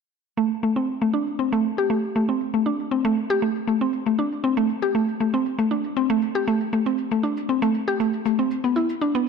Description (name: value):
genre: afro house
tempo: 118 BPM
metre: 4/4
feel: straight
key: A minor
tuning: A4 = 440 Hz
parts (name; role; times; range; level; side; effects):
- mallet-like synth pluck; arpeggios; 0.4-9.3 s; A3 to G4; -20 LUFS; equal; chorus, tape echo
- shaker; drums; 0.4-9.2 s; none; -50 LUFS; right 1 dB; none
room: moderate lush hall reverb, RT60 2.0 s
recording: none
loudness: -20 LUFS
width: side -5 dB against mid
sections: 0.4-9.3 A section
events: none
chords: none